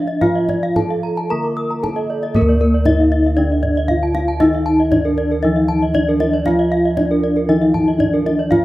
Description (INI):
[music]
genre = Balinese gamelan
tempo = 117 BPM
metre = 4/4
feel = straight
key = unclear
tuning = A4 = 442 Hz
[part]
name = gamelan-type bronze metallophone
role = melody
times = 0.0-8.6 s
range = Bb3-20c to Bb4-20c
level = -18 LUFS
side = equal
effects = none
[part]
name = gamelan-type bronze metallophone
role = accompaniment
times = 0.0-8.6 s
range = D3 to Bb3-20c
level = -25 LUFS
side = right 1 dB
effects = none
[part]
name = gamelan-type bronze metallophone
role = arpeggios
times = 0.0-8.5 s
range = Bb4-20c to D6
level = -25 LUFS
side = right 4 dB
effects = none
[part]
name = gamelan-type bossed gongs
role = bass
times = 0.0-8.6 s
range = D2 to Bb4-20c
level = -19 LUFS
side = equal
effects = none
[part]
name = gamelan-type bronze metallophone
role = arpeggios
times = 0.1-8.6 s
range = Bb4-20c to Eb6+20c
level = -23 LUFS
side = left 3 dB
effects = none
[part]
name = kendang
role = percussion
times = 0.1-8.6 s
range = none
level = -26 LUFS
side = equal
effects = none
[sound]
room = light reverb, small room ambience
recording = rough home demo mix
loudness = -14 LUFS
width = side -16 dB against mid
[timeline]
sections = 0.0-2.4 A section; 2.4-8.6 B section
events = none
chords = none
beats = | 0.21 0.77 1.30 1.83 | 2.35 2.87 3.38 3.89 | 4.41 4.92 5.43 5.95 | 6.46 6.97 7.49 8.00 | 8.52